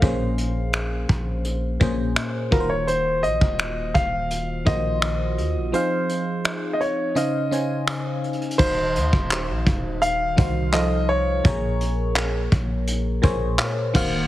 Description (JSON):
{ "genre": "contemporary R&B", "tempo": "84 BPM", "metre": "4/4", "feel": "straight", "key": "Eb dorian", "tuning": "A4 = 439 Hz", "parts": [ { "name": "warm grand piano", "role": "melody", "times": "0.0-12.5 s", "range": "Bb4 to F5", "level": "-25 LUFS", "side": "equal", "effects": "tape echo" }, { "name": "FM electric piano", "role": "accompaniment", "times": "0.0-14.3 s", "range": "Bb2 to Ab5", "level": "-26 LUFS", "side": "equal", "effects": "chorus, phaser" }, { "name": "warm 808-style bass", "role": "bass", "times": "0.0-14.3 s", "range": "Eb1 to Eb2", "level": "-25 LUFS", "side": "equal", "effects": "none" }, { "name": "soft brush drum kit", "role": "drums", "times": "0.0-14.1 s", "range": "crash cymbal, finger snaps, handclaps, hi-hat, kick drum", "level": "-23 LUFS", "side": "equal", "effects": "none" } ], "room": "little or no reverb", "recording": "heavily compressed radio sound, multiband compression", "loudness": "-20 LUFS", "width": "side -14 dB against mid", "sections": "0.0-8.6 A section; 8.6-14.3 B section", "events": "kick muted 5.7-8.6", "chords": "0.0 Bbm9; 2.5 Ebm69; 5.7 Fm7; 7.2 Dbmaj9; 8.6 Ebm69; 10.7 F7; 11.4 Bbm9", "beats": "| 0.02 0.74 1.45 2.16 | 2.88 3.59 4.31 5.02 | 5.74 6.45 7.16 7.88 | 8.59 9.31 10.02 10.74 | 11.45 12.16 12.88 13.59" }